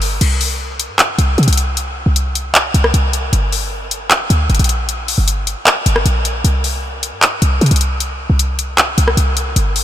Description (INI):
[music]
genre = hip hop, trap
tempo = 154 BPM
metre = 4/4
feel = half-time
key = unclear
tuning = A4 = 441 Hz
[part]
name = short 808-style bass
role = bass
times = 0.0-9.8 s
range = G1 to C3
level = -15 LUFS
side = equal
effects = none
[part]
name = trap drum kit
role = drums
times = 0.0-9.8 s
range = crash cymbal, handclaps, hi-hat, rim click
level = -16 LUFS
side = left 1 dB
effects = none
[sound]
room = light reverb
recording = none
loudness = -13 LUFS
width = side -12 dB against mid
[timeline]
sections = 0.2-9.8 A section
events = none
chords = none